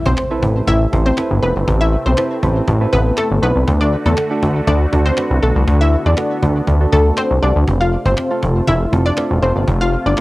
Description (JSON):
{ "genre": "dance-pop", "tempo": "120 BPM", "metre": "4/4", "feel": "straight", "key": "A minor", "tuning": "A4 = 440 Hz", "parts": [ { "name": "filtered supersaw swell", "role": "sustained chords", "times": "0.0-10.2 s", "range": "C3 to F#4", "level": "-26 LUFS", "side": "equal", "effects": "phaser, cassette tape" }, { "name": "impact", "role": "sound effects", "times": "0.0-1.7 s", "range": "none", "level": "-30 LUFS", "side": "equal", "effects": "none" }, { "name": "analog pluck", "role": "melody", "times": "0.1-10.2 s", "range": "A3 to F5", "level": "-19 LUFS", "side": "left 1 dB", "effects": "chorus, cassette tape, tape echo" }, { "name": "chorused synth bass", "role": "bass", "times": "0.1-10.1 s", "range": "E1 to E2", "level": "-15 LUFS", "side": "equal", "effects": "none" }, { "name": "cajon", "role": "drums", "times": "0.1-10.2 s", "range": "none", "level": "-22 LUFS", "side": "equal", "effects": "cassette tape" }, { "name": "soft electric-piano-like synth keys", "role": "accompaniment", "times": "0.3-10.2 s", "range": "A3 to C5", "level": "-23 LUFS", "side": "right 3 dB", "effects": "chorus, cassette tape" } ], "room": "little or no reverb", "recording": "home recording on cassette", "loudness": "-13 LUFS", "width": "side -19 dB against mid", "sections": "0.0-10.2 A section", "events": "impact 0.0-1.7", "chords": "0.0 Amadd9; 3.7 D; 7.7 F" }